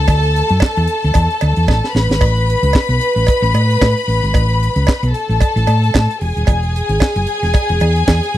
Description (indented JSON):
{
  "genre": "disco",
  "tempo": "113 BPM",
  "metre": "4/4",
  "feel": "swing 56% on 16ths",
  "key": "unclear",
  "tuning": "A4 = 440 Hz",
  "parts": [
    { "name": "warm studio string section", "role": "second line", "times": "0.0-8.4 s", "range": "G#4 to B5", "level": "-17 LUFS", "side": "left 2 dB", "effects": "none" },
    { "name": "hollow-body short-scale fingered electric bass", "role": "bass", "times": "0.0-8.4 s", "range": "D#1 to A2", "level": "-15 LUFS", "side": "equal", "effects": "none" },
    { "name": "tight funk drum kit", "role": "drums", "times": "0.1-8.4 s", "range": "handclaps, hi-hat, kick drum, snare drum, splash cymbal", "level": "-14 LUFS", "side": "equal", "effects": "none" },
    { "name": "cowbell", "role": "percussion", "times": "0.1-8.2 s", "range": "none", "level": "-24 LUFS", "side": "right 11 dB", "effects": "none" }
  ],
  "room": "little or no reverb",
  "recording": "dry, close 1970s-style studio recording",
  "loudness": "-12 LUFS",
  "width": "side -13 dB against mid",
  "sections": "0.0-8.4 A section",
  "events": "drum fill 1.7-2.2",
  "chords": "0.0 Dsus2; 1.9 Asus2; 6.2 E"
}